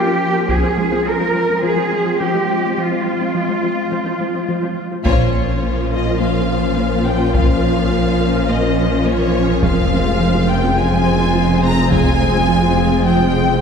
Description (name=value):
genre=cinematic, hybrid orchestral and electronic film score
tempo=105 BPM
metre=4/4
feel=straight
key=F minor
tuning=A4 = 439 Hz
part: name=swarming drone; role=sustained chords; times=0.0-13.6 s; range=F3 to Bb4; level=-21 LUFS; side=left 1 dB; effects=built-in reverb
part: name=warm symphonic cello section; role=bass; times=0.0-13.6 s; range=F2 to Bb4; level=-21 LUFS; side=right 2 dB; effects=none
part: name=warm symphonic viola section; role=accompaniment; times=0.1-13.6 s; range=F3 to Db4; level=-25 LUFS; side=equal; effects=none
part: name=soft round pluck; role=arpeggios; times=0.1-13.6 s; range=F3 to Bb4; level=-25 LUFS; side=equal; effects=none
part: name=taiko ensemble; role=drums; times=0.5-1.6, 5.1-12.4 s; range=none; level=-20 LUFS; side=left 1 dB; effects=none
part: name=rich symphonic violin section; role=melody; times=5.1-13.6 s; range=Db5 to Bb5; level=-22 LUFS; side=left 2 dB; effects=none
part: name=warm studio violin section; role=second line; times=5.1-13.6 s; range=F4 to C5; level=-24 LUFS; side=left 4 dB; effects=none
part: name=mellow French horn section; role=sustained chords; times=5.1-13.6 s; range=F3 to Db4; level=-24 LUFS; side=left 3 dB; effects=none
part: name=saturated sub bass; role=bass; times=5.1-13.6 s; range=F1 to Bb1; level=-23 LUFS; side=equal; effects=none
part: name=warm symphonic double bass section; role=bass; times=5.1-13.6 s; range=F1 to Bb1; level=-22 LUFS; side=right 3 dB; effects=none
room=wet scoring stage reverb, RT60 1.8 s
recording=heard from further back in the room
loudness=-14 LUFS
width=side -6 dB against mid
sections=0.0-5.1 A section; 5.1-13.6 B section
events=band accent 5.1-5.6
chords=0.5 Fm; 5.1 Bbmadd9; 9.6 Fm